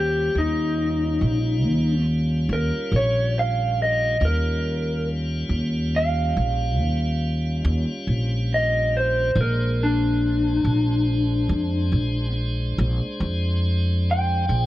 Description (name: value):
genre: slow blues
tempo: 47 BPM (dotted quarters)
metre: 12/8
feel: straight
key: unclear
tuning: A4 = 441 Hz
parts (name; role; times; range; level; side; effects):
- electric guitar through a small old amp; melody; 0.0-14.7 s; D4 to G5; -23 LUFS; equal; none
- tonewheel organ; sustained chords; 0.0-14.7 s; G3 to C5; -32 LUFS; equal; slow rotary speaker
- upright bass; bass; 0.0-14.7 s; Bb1 to F2; -22 LUFS; equal; none
room: small room ambience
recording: worn, warbling old tape, cassette tape, warbly pitch drift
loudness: -20 LUFS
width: side -15 dB against mid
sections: 0.0-14.7 A section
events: none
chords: 0.0 Eb9; 9.4 Bb9